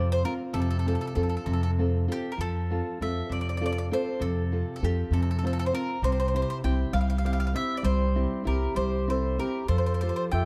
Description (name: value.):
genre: italian folk, Italian serenade.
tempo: 66 BPM (dotted quarters).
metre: 6/8.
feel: straight.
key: F major.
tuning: A4 = 440 Hz.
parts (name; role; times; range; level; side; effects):
bowl-back mandolin; melody; 0.0-10.5 s; G4 to G5; -34 LUFS; equal; none.
nylon-string guitar; accompaniment; 0.0-10.5 s; C3 to C5; -33 LUFS; equal; none.
upright bass; bass; 0.0-10.5 s; C2 to F2; -29 LUFS; equal; none.
mellow clarinet; second line; 8.5-10.5 s; G4 to E5; -36 LUFS; equal; none.
room: light reverb.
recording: dark, warm production.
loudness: -27 LUFS.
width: mono.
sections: 0.0-2.4 A section; 2.4-10.5 A section.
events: none.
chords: 0.0 F; 6.0 C; 9.7 Fadd9.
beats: | 0.54 1.46 | 2.38 3.30 | 4.21 5.12 | 6.03 6.93 | 7.84 8.76 | 9.69.